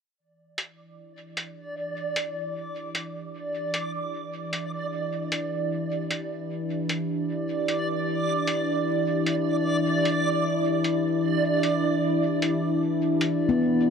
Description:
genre	ambient dub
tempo	76 BPM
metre	4/4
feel	straight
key	E minor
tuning	A4 = 440 Hz
part	warbly tape-like pad	sustained chords	1.3-13.9 s	E3 to E5	-26 LUFS	left 1 dB	chorus, built-in reverb
part	backwards swelling texture	texture	1.2-13.9 s	D5	-29 LUFS	right 3 dB	built-in reverb
part	electronic hi-hat	drums	0.6-13.4 s	none	-30 LUFS	equal	none
part	handpan	arpeggios	13.5-13.9 s	B3	-20 LUFS	left 2 dB	none
room	moderate concert hall reverb, RT60 1.7 s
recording	dark, warm production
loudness	-24 LUFS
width	side -6 dB against mid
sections	0.2-13.9 A section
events	fade-in on ambient pad 0.2-13.9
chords	0.2 Em7

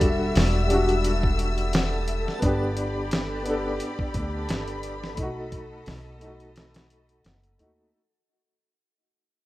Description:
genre	trip hop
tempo	87 BPM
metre	4/4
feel	swing 55% on 16ths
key	unclear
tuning	A4 = 443 Hz
part	felt-muted upright piano	accompaniment	0.0-8.0 s	G3 to A4	-28 LUFS	left 1 dB	tremolo, tape echo
part	clear studio string section	sustained chords	0.0-7.9 s	G3 to E6	-32 LUFS	left 1 dB	none
part	upright bass	bass	0.0-7.9 s	E1 to D#2	-28 LUFS	equal	none
part	dusty soul sampler-style drum kit	drums	0.0-7.8 s	hi-hat, kick drum, snare drum	-27 LUFS	equal	small room ambience
part	backwards swelling texture	texture	0.0-8.0 s	A4	-36 LUFS	right 1 dB	built-in reverb
room	studio reverb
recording	rough home demo mix, vinyl crackle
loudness	-23 LUFS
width	side -17 dB against mid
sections	0.0-7.9 A section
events	fade-out 0.6-7.9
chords	0.0 Em7; 2.4 G; 5.2 B7

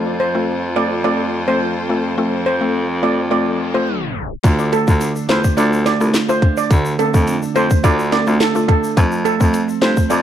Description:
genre	dancehall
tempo	106 BPM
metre	4/4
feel	straight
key	D minor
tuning	A4 = 442 Hz
part	mallet-like synth pluck	accompaniment	0.0-10.2 s	A3 to A4	-21 LUFS	left 2 dB	chorus
part	rich studio string section	sustained chords	0.0-4.4 s	F3 to C5	-28 LUFS	equal	sidechain pumping
part	breathy baritone saxophone	bass	0.0-10.2 s	C2 to G2	-21 LUFS	left 1 dB	none
part	steel pan	melody	0.2-10.2 s	A4 to D5	-20 LUFS	right 2 dB	ping-pong delay
part	reverse cymbal	sound effects	3.5-4.4 s	none	-31 LUFS	left 4 dB	none
part	clean electric guitar	arpeggios	4.4-10.2 s	D3 to F4	-21 LUFS	right 6 dB	none
part	island pop drum kit	drums	4.4-10.2 s	handclaps, hi-hat, kick drum, rim click, snare drum	-16 LUFS	equal	none
part	tube shaker and timbales	percussion	4.4-10.2 s	none	-31 LUFS	left 3 dB	none
room	light reverb, small room reverb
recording	dark, warm production, tape stop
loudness	-14 LUFS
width	side -10 dB against mid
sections	0.0-4.4 A section; 4.4-10.2 B section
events	reverse cymbal 3.5-4.4; tape stop 3.9-4.4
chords	0.0 F; 4.4 Dm; 9.0 F

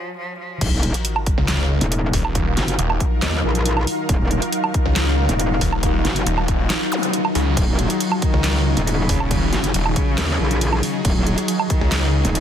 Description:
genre	heavy wobble dubstep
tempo	138 BPM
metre	4/4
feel	half-time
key	Eb minor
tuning	A4 = 445 Hz
part	dark cello	melody	0.0-0.6, 7.6-12.4 s	Db3 to Gb3	-26 LUFS	equal	ping-pong delay
part	supersaw chords	sustained chords	0.6-12.4 s	Eb3 to Bb4	-29 LUFS	left 1 dB	sidechain pumping
part	metallic wobble bass	bass	0.6-12.4 s	Eb1 to Eb2	-20 LUFS	equal	distortion, chorus, overdrive
part	dubstep drum kit	drums	0.6-12.4 s	crash cymbal, handclaps, hi-hat, snare drum, woodblock	-24 LUFS	right 2 dB	overdrive, high-pass filter on hats, high-pass filter on perc, high-pass filter on cymbals, high-pass filter on snare, high-pass filter on room
part	electronic kick drum	drums	0.6-11.8 s	none	-21 LUFS	equal	overdrive
part	sub drop and zap	sound effects	0.6-2.4, 6.9-7.0 s	none	-27 LUFS	equal	none
part	ethereal airy pad	texture	0.6-12.4 s	Gb3 to F5	-26 LUFS	left 2 dB	ensemble chorus, built-in reverb, sidechain pumping
part	snarling distorted saw bass	bass	1.4-12.2 s	Eb1 to Db2	-20 LUFS	equal	distortion, overdrive
room	little or no reverb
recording	dense, heavily limited modern master, high-pass filter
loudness	-17 LUFS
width	side -9 dB against mid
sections	0.6-12.4 A section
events	break 0.0-0.6; drop 0.6-12.4; impact 0.6-2.4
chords	0.0 N.C.; 0.6 Ebmadd9

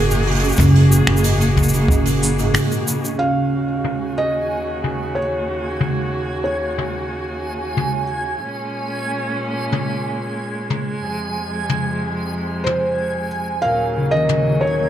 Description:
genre	folktronica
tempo	92 BPM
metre	4/4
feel	straight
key	unclear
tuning	A4 = 440 Hz
part	felt-muted upright piano	melody	0.0-8.0, 12.6-14.9 s	Bb4 to F5	-23 LUFS	right 1 dB	tape echo
part	warm string quartet	sustained chords	0.0-14.9 s	Eb2 to Ab4	-24 LUFS	right 1 dB	none
part	concert harp	arpeggios	0.0-5.9, 13.6-14.9 s	Ab2 to Db4	-21 LUFS	equal	tape echo
part	upright bass	bass	0.0-2.5 s	Gb1	-16 LUFS	equal	none
part	jazz brush drum kit	drums	0.1-14.4 s	finger snaps, hi-hat, shaker, toms	-24 LUFS	left 1 dB	low-pass filter on hats, low-pass filter on toms, low-pass filter on snare, low-pass filter on perc, low-pass filter on room
part	kick drum	drums	0.6-2.0 s	none	-19 LUFS	equal	none
part	backwards swelling texture	texture	4.1-14.9 s	Ab5	-28 LUFS	right 3 dB	built-in reverb
part	vibraphone with soft mallets	second line	13.6-14.9 s	Bb4	-24 LUFS	left 3 dB	none
room	light reverb, studio reverb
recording	none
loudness	-17 LUFS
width	side -11 dB against mid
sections	0.0-3.2 A section; 3.2-14.9 B section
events	break 2.5-3.2; filter sweep on drum 3.2-14.9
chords	0.0 Gbadd9; 3.2 Ebm7; 8.4 Bbm7; 11.0 Fm; 13.6 Ebm7

